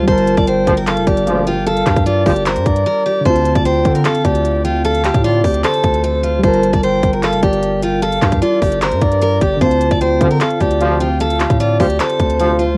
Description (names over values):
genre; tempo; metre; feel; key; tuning
hip hop, trap; 151 BPM; 4/4; half-time; D minor; A4 = 435 Hz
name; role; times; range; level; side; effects
picked steel-string acoustic guitar; melody; 0.0-12.8 s; F4 to D5; -21 LUFS; equal; cassette tape
breathy flute-like synth lead; second line; 0.0-12.8 s; C5 to A5; -22 LUFS; equal; chorus, cassette tape, analog delay
warbly lo-fi synth keys; accompaniment; 0.0-12.8 s; D3 to Bb4; -22 LUFS; equal; chorus, cassette tape
long sustained 808-style bass; bass; 0.0-12.8 s; F1 to D3; -22 LUFS; equal; none
trap drum kit; drums; 0.1-12.7 s; handclaps, hi-hat, kick drum; -20 LUFS; equal; none
mellow brass ensemble; stabs; 0.7-2.3, 10.2-12.7 s; D2 to F3; -20 LUFS; equal; cassette tape
room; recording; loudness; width
little or no reverb; home recording on cassette, vinyl crackle; -15 LUFS; mono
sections
0.0-3.3 A section; 3.3-12.8 A section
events
drums muted 2.9-3.3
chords
0.1 Gm7; 3.3 Dm7; 6.4 Gm7; 9.6 Dm7